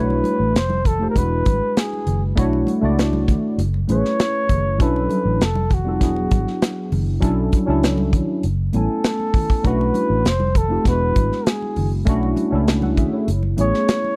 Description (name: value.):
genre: lush 1970s-style soul.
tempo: 99 BPM.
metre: 4/4.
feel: straight.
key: B dorian.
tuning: A4 = 440 Hz.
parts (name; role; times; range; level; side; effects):
breathy flugelhorn; melody; 0.0-14.2 s; F#4 to C#5; -25 LUFS; equal; none.
mellow tine electric piano; accompaniment; 0.0-14.2 s; F#3 to G#5; -24 LUFS; equal; analog chorus.
vintage muted fingered electric bass; bass; 0.0-13.7 s; E1 to C#2; -24 LUFS; equal; none.
congas; percussion; 0.1-14.2 s; none; -32 LUFS; equal; none.
modern studio drum kit; drums; 0.2-14.0 s; hi-hat, kick drum, snare drum; -22 LUFS; equal; none.
room: studio ambience.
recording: dry, close 1970s-style studio recording.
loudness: -19 LUFS.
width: mono.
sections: 0.0-14.2 A section.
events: none.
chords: 0.0 Bm11; 0.6 F9; 1.2 E9; 2.4 Bm11; 3.6 F#m11; 4.8 Bm11; 5.4 F9; 6.0 E9; 7.2 Bm11; 8.4 F#m11; 9.6 Bm11; 10.3 F9; 10.9 E9; 12.1 Bm11; 13.3 F#m11.